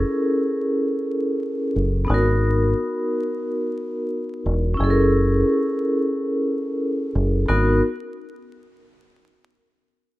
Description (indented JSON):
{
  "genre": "hip hop",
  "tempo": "89 BPM",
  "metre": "4/4",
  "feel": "swing 56% on 16ths",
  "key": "G# minor",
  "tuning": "A4 = 440 Hz",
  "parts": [
    { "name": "vibraphone with medium hard mallets", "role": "accompaniment", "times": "0.0-7.8 s", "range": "B3 to A#4", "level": "-21 LUFS", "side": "equal", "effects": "cassette tape, high-pass filter, low-pass filter" },
    { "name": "deep dub fingered electric bass", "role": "bass", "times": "0.0-7.8 s", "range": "E1 to G#1", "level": "-20 LUFS", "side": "equal", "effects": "none" }
  ],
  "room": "light reverb, studio reverb",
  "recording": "rough home demo mix, vinyl crackle",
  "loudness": "-19 LUFS",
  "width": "side -17 dB against mid",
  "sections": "0.0-7.5 A section; 7.5-10.2 B section",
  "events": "none",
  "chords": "0.0 F#7; 2.1 G#m7; 4.8 F#7; 7.5 G#m7"
}